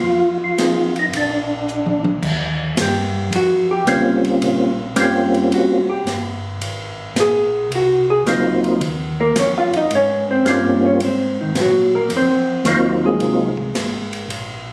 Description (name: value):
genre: soul jazz organ trio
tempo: 109 BPM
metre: 4/4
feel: swing 68% on 8ths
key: Eb mixolydian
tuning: A4 = 441 Hz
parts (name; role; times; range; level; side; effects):
- percussive tonewheel organ; melody; 0.0-13.5 s; Gb3 to F4; -18 LUFS; equal; slow rotary speaker, chorus vibrato
- mellow tonewheel organ; bass; 0.0-14.7 s; F1 to Bb2; -29 LUFS; equal; chorus vibrato, slow rotary speaker
- hollow-body jazz guitar; accompaniment; 0.6-14.3 s; Eb3 to F5; -20 LUFS; equal; none
- open jazz drum kit; drums; 0.6-14.5 s; crash cymbal, hi-hat, kick drum, ride cymbal, snare drum, toms; -27 LUFS; equal; none
room: light reverb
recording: recorded on a phone in the room, club reverb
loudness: -18 LUFS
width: mono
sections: 0.0-2.2 A section; 2.2-14.7 B section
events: drum fill 1.7-2.2; hollow-body jazz guitar solo 2.2-14.7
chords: 0.0 Fm7; 1.1 Bb; 2.2 Eb13; 6.6 Ab13; 8.8 Eb13; 11.0 Ab13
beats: | 0.03 0.58 1.13 1.68 | 2.22 2.77 3.32 3.87 | 4.42 4.97 5.51 6.06 | 6.61 7.16 7.71 8.26 | 8.81 9.36 9.90 10.45 | 11.00 11.55 12.10 12.65 | 13.20 13.75 14.30